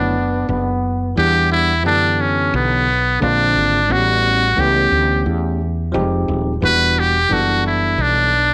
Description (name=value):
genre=hip hop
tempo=88 BPM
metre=4/4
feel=swing 62% on 16ths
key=E dorian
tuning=A4 = 441 Hz
part: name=trumpet with metal mute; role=melody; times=0.0-8.5 s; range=B3 to B4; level=-18 LUFS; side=equal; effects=none
part: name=warm trombone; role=second line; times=0.0-1.1 s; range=B3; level=-24 LUFS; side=equal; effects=none
part: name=bell-like tine electric piano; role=accompaniment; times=0.0-8.3 s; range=D3 to F#5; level=-24 LUFS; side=equal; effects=none
part: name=woody fretless electric bass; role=bass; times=0.0-8.5 s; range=Eb1 to F#2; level=-23 LUFS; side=equal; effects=none
room=moderate echo chamber reverb, RT60 1.5 s, small room reverb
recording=none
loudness=-17 LUFS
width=mono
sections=0.0-1.2 A section; 1.2-8.5 A section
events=none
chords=0.0 Bm9; 1.2 Em9; 3.2 A#9; 3.9 A9; 5.9 Fm9; 6.6 Em9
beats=0.49 | 1.17 1.85 2.53 3.21 | 3.90 4.58 5.26 5.94 | 6.62 7.31 7.99